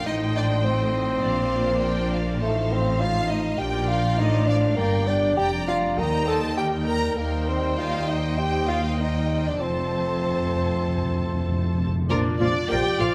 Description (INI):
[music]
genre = quick classical-period movement for symphony orchestra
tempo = 100 BPM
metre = 4/4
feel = straight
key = Bb major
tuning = A4 = 440 Hz
[part]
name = warm studio violin section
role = melody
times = 0.0-13.1 s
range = Bb4 to Bb5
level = -37 LUFS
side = equal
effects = none
[part]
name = warm studio violin section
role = second line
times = 0.0-13.1 s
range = A4 to Bb5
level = -36 LUFS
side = equal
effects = none
[part]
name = rich studio viola section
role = accompaniment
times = 0.0-13.1 s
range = Bb3 to Eb5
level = -37 LUFS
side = equal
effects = none
[part]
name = warm French horn section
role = sustained chords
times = 0.0-13.1 s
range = F3 to F4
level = -35 LUFS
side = equal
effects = none
[part]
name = mellow bassoon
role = accompaniment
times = 0.1-13.1 s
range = F3 to Bb4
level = -28 LUFS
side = equal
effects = none
[part]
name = rich studio double bass section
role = bass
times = 0.1-13.1 s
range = F1 to Eb2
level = -30 LUFS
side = equal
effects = none
[part]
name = warm studio cello section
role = bass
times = 0.1-13.1 s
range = Eb2 to Bb2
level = -31 LUFS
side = equal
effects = none
[part]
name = timpani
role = percussion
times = 9.6-13.0 s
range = F2 to Bb2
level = -30 LUFS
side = equal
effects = none
[part]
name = bright oboe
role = second line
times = 12.1-13.1 s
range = D5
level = -35 LUFS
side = equal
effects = none
[part]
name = silver concert flute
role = second line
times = 12.1-13.0 s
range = D4 to Bb4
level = -33 LUFS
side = equal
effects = none
[part]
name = warm clarinet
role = second line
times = 12.1-13.1 s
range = F4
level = -33 LUFS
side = equal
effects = none
[part]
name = clear trumpet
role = stabs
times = 12.1-13.1 s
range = D5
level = -32 LUFS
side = equal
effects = none
[sound]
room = moderate scoring stage reverb, RT60 1.8 s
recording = none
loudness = -23 LUFS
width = mono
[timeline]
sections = 0.0-12.1 A section; 12.1-13.1 B section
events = timpani fill 9.6-12.1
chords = 0.1 F7/A; 1.2 Bb; 2.4 F7/A; 3.6 Bb; 4.8 Gm; 6.0 Eb; 9.6 F; 12.1 Bb